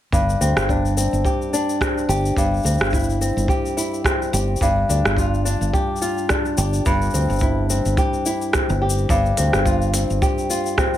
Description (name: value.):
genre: folktronica.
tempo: 107 BPM.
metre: 4/4.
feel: swing 56% on 16ths.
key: unclear.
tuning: A4 = 439 Hz.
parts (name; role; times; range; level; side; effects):
flamenco guitar; arpeggios; 0.1-11.0 s; G2 to G4; -21 LUFS; left 1 dB; ping-pong delay.
fingered electric bass; bass; 0.1-10.2 s; G1 to D2; -21 LUFS; equal; none.
kick drum; drums; 0.1-10.9 s; none; -23 LUFS; equal; none.
organic electronic drum kit; drums; 0.1-11.0 s; hi-hat, rim click, shaker; -24 LUFS; equal; overdrive.
room: light reverb.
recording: none.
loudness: -17 LUFS.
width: side -12 dB against mid.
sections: 0.1-11.0 A section.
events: none.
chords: 0.1 Gsus4; 2.4 C/G; 4.6 Dm/G; 6.9 C/G; 9.1 G7sus4.